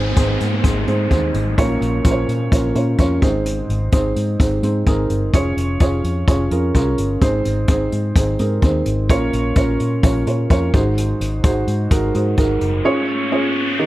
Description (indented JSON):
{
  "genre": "piano-driven pop",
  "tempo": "128 BPM",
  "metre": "4/4",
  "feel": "straight",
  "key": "unclear",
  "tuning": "A4 = 440 Hz",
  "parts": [
    { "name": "felt-muted upright piano", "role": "accompaniment", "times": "0.0-13.9 s", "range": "Ab2 to Eb5", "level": "-19 LUFS", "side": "right 1 dB", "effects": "none" },
    { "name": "vintage muted fingered electric bass", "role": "bass", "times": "0.0-12.8 s", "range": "F1 to Bb2", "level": "-21 LUFS", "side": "equal", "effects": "none" },
    { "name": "downlifter and riser", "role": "sound effects", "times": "0.0-3.5, 12.2-13.8 s", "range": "none", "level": "-26 LUFS", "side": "equal", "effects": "none" },
    { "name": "jazz brush drum kit", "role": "drums", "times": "0.2-12.7 s", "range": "hi-hat, kick drum", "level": "-17 LUFS", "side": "equal", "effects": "none" }
  ],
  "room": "light reverb, studio ambience",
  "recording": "none",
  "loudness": "-15 LUFS",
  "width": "side -16 dB against mid",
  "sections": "0.0-13.9 A section",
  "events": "riser 12.2-13.9",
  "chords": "0.0 Ab; 1.6 Bbm; 3.2 Ab; 5.3 Db/F; 7.2 Ab; 9.1 Bbm; 10.7 Ab7; 12.8 Db"
}